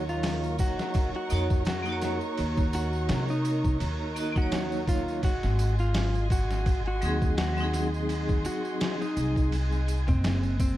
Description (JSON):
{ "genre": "trip hop", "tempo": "84 BPM", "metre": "4/4", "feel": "swing 56% on 16ths", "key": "Eb dorian", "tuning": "A4 = 440 Hz", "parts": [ { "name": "electric slide guitar", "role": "melody", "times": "0.0-10.8 s", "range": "C4 to Gb4", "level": "-33 LUFS", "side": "equal", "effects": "vintage 12-bit sampler grit, dub echo" }, { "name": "vibraphone with hard mallets", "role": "accompaniment", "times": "0.0-9.9 s", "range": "Gb3 to Eb5", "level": "-33 LUFS", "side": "right 1 dB", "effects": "tremolo, vintage 12-bit sampler grit" }, { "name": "dark symphonic violin section", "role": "sustained chords", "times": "0.0-10.8 s", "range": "Ab4 to Db6", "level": "-38 LUFS", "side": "equal", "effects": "none" }, { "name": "upright bass", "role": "bass", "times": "0.0-10.8 s", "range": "Gb1 to C3", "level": "-28 LUFS", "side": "equal", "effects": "tube saturation" }, { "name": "tambourine", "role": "percussion", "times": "0.1-10.8 s", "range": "none", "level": "-48 LUFS", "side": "right 4 dB", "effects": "none" }, { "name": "trip hop sampler-style drum kit", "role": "drums", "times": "0.2-10.8 s", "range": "hi-hat, kick drum, ride cymbal, snare drum", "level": "-30 LUFS", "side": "equal", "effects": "overdrive" } ], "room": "studio reverb", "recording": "dark, warm production", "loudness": "-25 LUFS", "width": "side -14 dB against mid", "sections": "0.0-10.8 A section", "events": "none", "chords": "0.0 Ebm7; 5.2 Ab7", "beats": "0.24 0.95 1.66 | 2.38 3.09 3.81 4.52 | 5.24 5.95 6.66 7.38 | 8.09 8.81 9.52 10.24" }